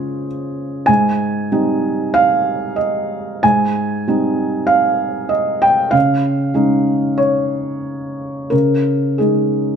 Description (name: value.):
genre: neoclassical minimalist piano.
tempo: 94 BPM.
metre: 4/4.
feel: uneven beats, rubato.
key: Ab major.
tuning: A4 = 441 Hz.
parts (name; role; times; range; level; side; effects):
felt-muted upright piano; solo; 0.0-9.8 s; Ab2 to Ab5; -14 LUFS; right 1 dB; none.
room: moderate stone room reverb, RT60 1.4 s.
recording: band playing live in one room.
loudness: -14 LUFS.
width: side -7 dB against mid.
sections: 0.0-9.8 A section.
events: none.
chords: 0.0 Db; 0.9 Abmaj7; 5.9 Dbadd9.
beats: 0.27 | 0.88 1.50 2.14 2.76 | 3.42 4.06 4.69 5.32 | 5.95 6.57 7.20 7.86 | 8.52 9.19.